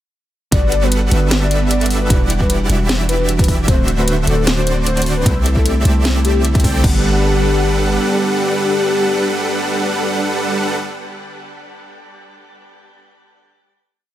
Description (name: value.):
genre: future bass.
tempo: 152 BPM.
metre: 4/4.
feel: swing 54% on 16ths, half-time.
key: G major.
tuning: A4 = 442 Hz.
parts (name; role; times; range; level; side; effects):
soft octave-layered synth lead; melody; 0.5-10.8 s; G4 to D5; -22 LUFS; left 3 dB; chorus, phaser, sidechain pumping, tape echo.
glassy digital keys; accompaniment; 0.5-11.5 s; D3 to F#5; -23 LUFS; right 2 dB; chorus, sidechain pumping, tape echo.
airy breathy pad; sustained chords; 1.4-10.8 s; D3 to F#5; -28 LUFS; equal; none.
supersaw chords; riff; 0.5-10.8 s; D3 to G5; -20 LUFS; right 1 dB; sidechain pumping.
warm 808-style bass; bass; 0.5-8.0 s; D1 to C2; -17 LUFS; equal; sidechain pumping.
electronic kick drum; drums; 0.5-6.9 s; none; -16 LUFS; equal; none.
trap drum kit; drums; 0.5-6.9 s; crash cymbal, hi-hat, snare drum; -21 LUFS; equal; none.
room: little or no reverb.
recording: none.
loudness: -13 LUFS.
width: side -13 dB against mid.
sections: 0.5-6.8 drop; 6.8-10.0 final chord.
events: drop 0.5-6.8.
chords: 0.5 Gmaj7; 2.1 Em9; 3.7 D7; 5.3 C69; 6.8 Gmaj7.